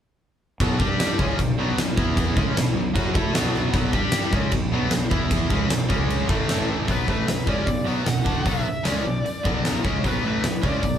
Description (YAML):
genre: hard rock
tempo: 153 BPM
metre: 4/4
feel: straight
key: B minor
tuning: A4 = 440 Hz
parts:
  - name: hollow soft pad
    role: sustained chords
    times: 0.6-6.9 s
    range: E4 to D6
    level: -38 LUFS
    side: right 1 dB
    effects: none
  - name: cranked stack guitar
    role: riff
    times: 0.6-11.0 s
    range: A2 to A4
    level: -27 LUFS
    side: right 5 dB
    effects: overdrive
  - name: distorted electric guitar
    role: riff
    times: 0.6-11.0 s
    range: A2 to A4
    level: -28 LUFS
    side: left 6 dB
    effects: overdrive
  - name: fuzz fingered electric bass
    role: bass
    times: 0.6-11.0 s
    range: A1 to A2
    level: -28 LUFS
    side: equal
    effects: overdrive
  - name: huge arena drum kit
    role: drums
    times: 0.6-10.9 s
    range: crash cymbal, hi-hat, kick drum, snare drum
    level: -24 LUFS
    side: equal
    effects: none
  - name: bluesy overdriven lead guitar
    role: melody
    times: 6.9-11.0 s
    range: B4 to F#5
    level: -29 LUFS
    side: equal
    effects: distortion
room: light reverb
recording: band playing live in one room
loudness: -20 LUFS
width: side -9 dB against mid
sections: 0.6-6.9 A section; 6.9-11.0 B section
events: none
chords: 0.6 Bm; 0.8 G5; 1.2 Bm; 2.0 E5; 2.4 Bm; 3.9 G5; 4.3 Bm; 5.1 E5; 5.5 Bm; 5.9 C#5; 6.3 A5; 6.9 Bm